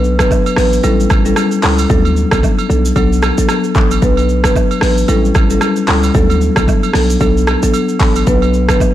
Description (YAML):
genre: afrobeats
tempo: 113 BPM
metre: 4/4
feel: swing 58% on 16ths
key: D major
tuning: A4 = 442 Hz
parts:
  - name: marimba with soft mallets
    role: accompaniment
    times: 0.0-8.8 s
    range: F#3 to B4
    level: -14 LUFS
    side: left 2 dB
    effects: none
  - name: hard-hitting 808-style bass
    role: bass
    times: 0.0-8.7 s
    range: A1 to D2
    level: -15 LUFS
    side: equal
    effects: none
  - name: deep house drum kit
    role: drums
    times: 0.0-8.9 s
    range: handclaps, hi-hat, kick drum, rim click, shaker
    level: -15 LUFS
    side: equal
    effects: soft clipping on snare
  - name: agogo bells and woodblock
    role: percussion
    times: 0.2-8.9 s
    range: none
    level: -25 LUFS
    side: right 9 dB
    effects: none
room: little or no reverb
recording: blown-out, overdriven recording, overdrive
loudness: -10 LUFS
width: side -12 dB against mid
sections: 0.0-8.9 A section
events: none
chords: 0.0 D6; 0.8 A7; 1.9 D6; 5.1 A7; 6.1 D6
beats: 0.31 0.84 1.37 | 1.90 2.43 2.96 3.49 | 4.02 4.55 5.08 5.62 | 6.15 6.68 7.21 7.74 | 8.27 8.80